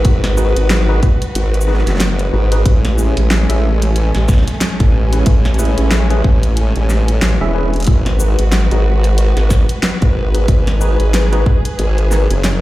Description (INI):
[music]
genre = glitch hop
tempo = 92 BPM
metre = 4/4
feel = swing 58% on 16ths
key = G# phrygian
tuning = A4 = 441 Hz
[part]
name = dark chamber string section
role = sustained chords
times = 0.0-12.6 s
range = G#3 to B4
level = -23 LUFS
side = right 1 dB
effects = sidechain pumping
[part]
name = tine electric piano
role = stabs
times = 0.0-12.3 s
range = C#4 to E5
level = -23 LUFS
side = left 1 dB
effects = overdrive, medium stereo tremolo, vintage 12-bit sampler grit, sidechain pumping, dub echo
[part]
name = formant-sweep wobble bass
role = bass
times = 0.0-12.6 s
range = E1 to A1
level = -14 LUFS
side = equal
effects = chorus
[part]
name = pop drum kit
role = drums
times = 0.0-12.6 s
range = hi-hat, shaker, snare drum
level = -20 LUFS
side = equal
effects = none
[part]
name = electronic kick drum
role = drums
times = 0.1-11.6 s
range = none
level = -12 LUFS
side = equal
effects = none
[sound]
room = little or no reverb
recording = played on a big sound system in a bare room, large studio reverb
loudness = -12 LUFS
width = side -16 dB against mid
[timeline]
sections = 0.0-12.6 A section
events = none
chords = 0.0 G#m7; 2.7 Amaj7; 7.9 G#m7